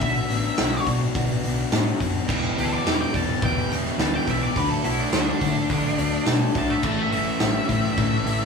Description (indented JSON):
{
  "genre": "classic rock",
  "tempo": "106 BPM",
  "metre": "4/4",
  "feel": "straight",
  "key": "E dorian",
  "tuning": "A4 = 440 Hz",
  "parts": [
    { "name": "octave-fuzz lead guitar", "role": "melody", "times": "0.0-8.4 s", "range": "D4 to A5", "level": "-27 LUFS", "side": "left 2 dB", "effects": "distortion, slapback echo" },
    { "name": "picked twelve-string acoustic guitar", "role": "accompaniment", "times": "0.0-8.4 s", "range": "E2 to G4", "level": "-34 LUFS", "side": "right 1 dB", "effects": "none" },
    { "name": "raw garage guitar", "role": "riff", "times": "0.0-8.4 s", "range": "A2 to G4", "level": "-28 LUFS", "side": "left 6 dB", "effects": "overdrive" },
    { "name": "hollow-body short-scale fingered electric bass", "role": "bass", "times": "0.0-8.4 s", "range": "E1 to D3", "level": "-28 LUFS", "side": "left 1 dB", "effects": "none" },
    { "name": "big rock drum kit", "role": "drums", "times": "0.0-8.4 s", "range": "crash cymbal, hi-hat, kick drum, snare drum", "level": "-25 LUFS", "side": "equal", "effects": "none" },
    { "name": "tambourine", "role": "percussion", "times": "0.0-8.4 s", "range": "none", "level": "-46 LUFS", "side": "right 5 dB", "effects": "none" },
    { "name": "overdriven electric guitar", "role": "riff", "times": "2.3-8.4 s", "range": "E2 to D4", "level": "-28 LUFS", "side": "right 5 dB", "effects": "none" }
  ],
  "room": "moderate studio reverb, RT60 0.7 s",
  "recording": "band playing live in one room",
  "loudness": "-20 LUFS",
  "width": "side -5 dB against mid",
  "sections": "0.0-8.4 A section",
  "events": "lead electric guitar solo 0.0-8.4",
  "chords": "0.0 Bm; 2.3 Em; 4.6 D6; 6.8 A"
}